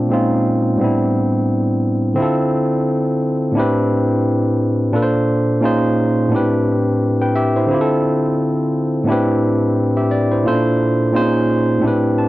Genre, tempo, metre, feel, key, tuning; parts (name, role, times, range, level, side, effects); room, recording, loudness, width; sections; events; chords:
R&B; 87 BPM; 4/4; swing 58% on 16ths; A minor; A4 = 437 Hz
barky tine electric piano; solo; 0.0-12.3 s; A2 to A5; -14 LUFS; equal; low-pass filter
light reverb; dry, close 1970s-style studio recording; -14 LUFS; side -17 dB against mid
0.0-2.2 A section; 2.2-12.3 B section
0.1 Bbm11; 0.8 Am11; 2.2 Dm9; 3.6 Am11; 4.9 Bbmaj9; 5.6 Bbm11; 6.3 Am11; 7.7 Dm9; 9.1 Am11; 10.5 Bbmaj9; 11.1 Bbm11